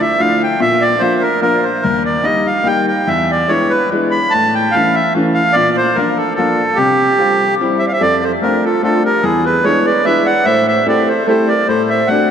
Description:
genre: musette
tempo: 147 BPM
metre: 3/4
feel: rubato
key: unclear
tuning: A4 = 444 Hz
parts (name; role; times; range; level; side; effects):
- accordion; melody; 0.0-12.3 s; G4 to B5; -14 LUFS; right 1 dB; none
- bright upright piano; accompaniment; 0.2-12.3 s; Eb2 to G4; -16 LUFS; left 2 dB; none
- mellow clarinet; second line; 7.8-12.3 s; E4 to D5; -18 LUFS; right 4 dB; none
room: wet cathedral reverb, RT60 5.5 s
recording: in a vast, echoing space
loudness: -12 LUFS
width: side -8 dB against mid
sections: 0.0-12.3 A section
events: none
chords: 0.0 Dmadd9; 0.6 Bb; 1.8 Eb; 3.1 E7; 4.3 A; 5.6 Bb; 6.8 Csus4; 7.6 C; 8.0 F6; 9.2 E7; 10.5 Am7; 11.7 D7/A

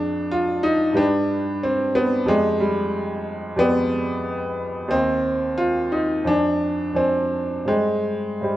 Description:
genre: classical, romantic character piece for solo piano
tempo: 90 BPM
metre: 4/4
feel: rubato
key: unclear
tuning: A4 = 445 Hz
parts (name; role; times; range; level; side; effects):
- warm grand piano; solo; 0.0-8.6 s; Eb2 to Ab5; -19 LUFS; equal; none
room: light reverb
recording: close, detailed microphones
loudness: -19 LUFS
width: side -14 dB against mid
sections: 0.0-8.6 A section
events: none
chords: 0.0 Ddim/F; 1.0 G; 2.3 G7/F; 4.9 Cm/Eb; 6.3 Dm7b5/F; 7.7 Cm/G

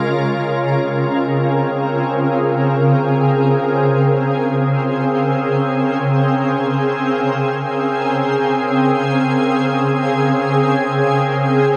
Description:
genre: ambient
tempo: free time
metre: none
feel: none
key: unclear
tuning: A4 = 440 Hz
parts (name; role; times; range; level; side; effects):
- shimmering ambient pad; solo; 0.0-11.8 s; Db3 to Bb4; -17 LUFS; equal; chorus, built-in reverb, diffuse ambient delay
room: wet huge ambient reverb, RT60 8.6 s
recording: none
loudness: -17 LUFS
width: mono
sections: 0.1-11.8 A section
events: none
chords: 0.1 Bbm9

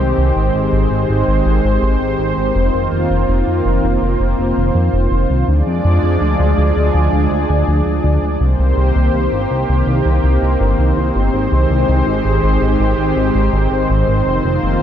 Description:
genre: synthwave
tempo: 82 BPM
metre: 4/4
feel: straight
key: unclear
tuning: A4 = 442 Hz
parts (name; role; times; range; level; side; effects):
- lush unison pad; sustained chords; 0.0-14.8 s; Eb3 to D5; -16 LUFS; equal; chorus
- chorused synth bass; bass; 0.0-14.8 s; F1 to F2; -15 LUFS; equal; none
room: light reverb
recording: none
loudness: -13 LUFS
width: side -10 dB against mid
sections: 0.0-14.8 A section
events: none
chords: 0.0 Abmaj7; 2.6 F7sus4; 5.5 Ddim; 8.4 Cm7; 11.3 Abmaj7; 14.3 F7sus4

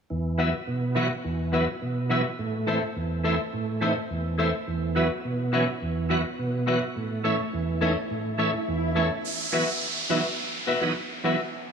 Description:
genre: dancehall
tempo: 105 BPM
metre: 4/4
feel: straight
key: unclear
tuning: A4 = 440 Hz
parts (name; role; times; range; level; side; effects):
- bright tonewheel organ; accompaniment; 0.1-11.4 s; E2 to F#4; -26 LUFS; right 2 dB; chorus vibrato, slow rotary speaker
- semi-hollow electric guitar; arpeggios; 0.4-11.4 s; F#4 to E5; -30 LUFS; left 5 dB; none
- swell and downlifter; sound effects; 7.5-11.7 s; none; -31 LUFS; right 1 dB; none
room: moderate lush hall reverb, RT60 3.1 s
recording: small room ambience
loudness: -24 LUFS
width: side -6 dB against mid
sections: 0.1-9.2 A section; 9.2-11.7 B section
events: swell 7.5-9.2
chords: 0.1 Esus2; 2.4 Am; 4.7 Esus2; 7.0 A; 9.2 Esus2

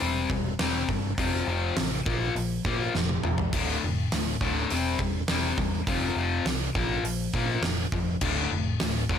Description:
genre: hard rock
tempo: 102 BPM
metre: 4/4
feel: straight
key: unclear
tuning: A4 = 440 Hz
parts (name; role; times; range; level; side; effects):
- distorted electric guitar; riff; 0.0-9.2 s; D2 to C4; -28 LUFS; left 5 dB; distortion
- overdriven picked electric bass; bass; 0.0-9.2 s; D1 to Bb2; -30 LUFS; right 2 dB; none
- gated 80s drum kit; drums; 0.0-9.2 s; crash cymbal, hi-hat, kick drum, snare drum, toms; -30 LUFS; right 2 dB; none
room: light reverb, small room ambience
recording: none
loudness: -25 LUFS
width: side -8 dB against mid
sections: 0.0-9.2 A section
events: drum fill 2.9-3.5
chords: 0.0 C/E; 1.2 F; 2.1 Bb5; 3.5 Dm; 4.7 C/E; 5.9 F5; 6.8 Bb5; 8.2 Dm

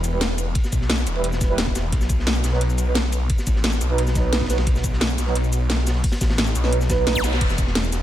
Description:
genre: dark technical drum and bass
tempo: 175 BPM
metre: 4/4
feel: straight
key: unclear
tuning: A4 = 440 Hz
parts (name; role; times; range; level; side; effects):
- snarling distorted saw bass; bass; 0.0-8.0 s; E1 to B1; -22 LUFS; equal; distortion, overdrive, sidechain pumping
- crunchy breakbeat drum kit; drums; 0.0-8.0 s; hi-hat, ride cymbal, snare drum; -32 LUFS; equal; high-pass filter on cymbals, high-pass filter on hats, high-pass filter on snare, high-pass filter on room
- drum and bass drum kit; drums; 0.0-8.0 s; crash cymbal, hi-hat, shaker, snare drum; -25 LUFS; equal; none
- mellow brass ensemble; stabs; 0.1-7.3 s; F#3 to B4; -27 LUFS; right 5 dB; analog delay
- electronic kick drum; drums; 0.6-7.7 s; none; -22 LUFS; equal; none
- zap; sound effects; 7.2 s; none; -27 LUFS; left 1 dB; none
room: small room ambience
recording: none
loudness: -18 LUFS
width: side -12 dB against mid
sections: 0.0-8.0 A section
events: none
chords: 0.0 Em; 1.9 B; 7.4 N.C.

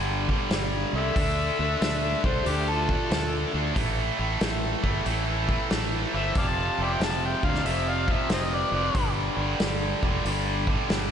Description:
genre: blues rock power trio and southern rock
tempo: 92 BPM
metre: 4/4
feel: swing 66% on 8ths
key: unclear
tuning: A4 = 440 Hz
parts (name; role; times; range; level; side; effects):
- tight distorted guitar; riff; 0.0-11.1 s; F2 to D4; -28 LUFS; right 1 dB; distortion, slapback echo
- fretless electric bass; bass; 0.0-11.1 s; F1 to D2; -30 LUFS; equal; analog chorus
- vintage drum kit; drums; 0.3-11.1 s; hi-hat, kick drum, snare drum; -29 LUFS; equal; none
- overdriven harmonica; melody; 1.0-9.1 s; G4 to A5; -30 LUFS; left 3 dB; slapback echo
- lead guitar through a small cranked amp; second line; 1.0-9.1 s; D4 to F5; -38 LUFS; right 2 dB; overdrive, slapback echo
room: moderate lush hall reverb, RT60 2.8 s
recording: big arena sound, nothing above 11.0 kHz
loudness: -23 LUFS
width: side -8 dB against mid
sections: 0.0-11.1 A section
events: none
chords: 0.0 G5; 1.2 Dm; 3.8 A5; 6.4 F5; 9.0 G5

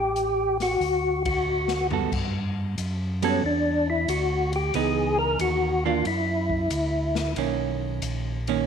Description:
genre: soul jazz organ trio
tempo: 92 BPM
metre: 4/4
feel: swing 68% on 8ths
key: unclear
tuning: A4 = 439 Hz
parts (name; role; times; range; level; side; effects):
- percussive tonewheel organ; melody; 0.0-7.3 s; C#4 to Bb4; -24 LUFS; left 2 dB; slow rotary speaker, overdrive, chorus vibrato
- mellow tonewheel organ; bass; 0.0-8.7 s; A1 to G2; -29 LUFS; equal; chorus vibrato, slow rotary speaker
- swinging big-band drum kit; drums; 0.2-8.6 s; crash cymbal, hi-hat, kick drum, ride cymbal, snare drum, toms; -34 LUFS; left 3 dB; none
- hollow-body jazz guitar; accompaniment; 1.9-8.7 s; D#3 to A4; -28 LUFS; right 12 dB; none
room: moderate echo chamber reverb, RT60 1.9 s, small room ambience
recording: 1960s-style stereo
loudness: -23 LUFS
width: side -7 dB against mid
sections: 0.0-2.1 A section; 2.1-8.7 B section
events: band accent 1.1-1.5; drum fill 1.5-2.1; tonewheel organ solo 2.1-8.7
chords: 0.0 A7(no3); 0.8 D; 2.1 Gmaj7(no3); 4.7 C#m9; 6.1 Dadd9; 7.4 Bmaj9

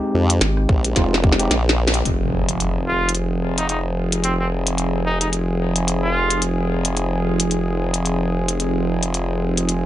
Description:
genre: glitch hop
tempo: 110 BPM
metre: 4/4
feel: swing 58% on 16ths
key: F minor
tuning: A4 = 440 Hz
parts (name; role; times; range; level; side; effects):
- overdriven tine electric piano; stabs; 0.0-1.5 s; Ab3 to G4; -24 LUFS; left 1 dB; sidechain pumping, ping-pong delay
- formant-sweep wobble bass; bass; 0.1-9.9 s; F1 to F2; -22 LUFS; equal; chorus
- glitchy drum kit; drums; 0.3-9.8 s; hi-hat, rim click, snare drum; -21 LUFS; left 1 dB; none
- rubbery square bass; bass; 0.4-0.7 s; Ab1; -19 LUFS; equal; none
- electronic kick drum; drums; 0.7-1.4 s; none; -17 LUFS; equal; none
- warm analog pad; sustained chords; 2.0-9.9 s; F3 to Ab4; -23 LUFS; right 1 dB; chorus, sidechain pumping
- impact; sound effects; 2.1-4.2 s; none; -26 LUFS; equal; none
- clear trumpet; melody; 2.9-6.4 s; C4 to F4; -25 LUFS; right 1 dB; vintage 12-bit sampler grit, ping-pong delay
room: moderate studio reverb, RT60 0.6 s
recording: nothing above 10.5 kHz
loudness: -17 LUFS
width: side -13 dB against mid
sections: 0.0-2.1 A section; 2.1-9.9 B section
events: drum fill 1.0-2.1; band accent 1.9; impact 2.1-4.2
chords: 0.0 Fm7

